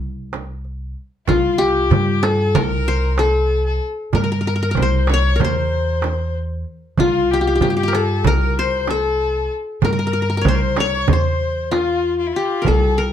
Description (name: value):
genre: Turkish makam ensemble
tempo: 190 BPM (eighths)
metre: 9/8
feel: straight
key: C makam hicaz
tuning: A4 = 441 Hz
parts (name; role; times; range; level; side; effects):
- qanun; melody; 0.0-13.1 s; F4 to Db5; -20 LUFS; left 2 dB; none
- upright bass; bass; 0.0-13.1 s; C2 to G2; -20 LUFS; equal; none
- darbuka; percussion; 0.3-13.1 s; none; -24 LUFS; right 4 dB; none
- frame drum; percussion; 0.3-12.8 s; none; -25 LUFS; right 7 dB; none
- rich violin; second line; 1.3-13.1 s; E4 to Db5; -24 LUFS; left 4 dB; none
room: light reverb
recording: dark, warm production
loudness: -16 LUFS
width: side -10 dB against mid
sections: 0.0-1.3 A section; 1.3-12.7 B section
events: none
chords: none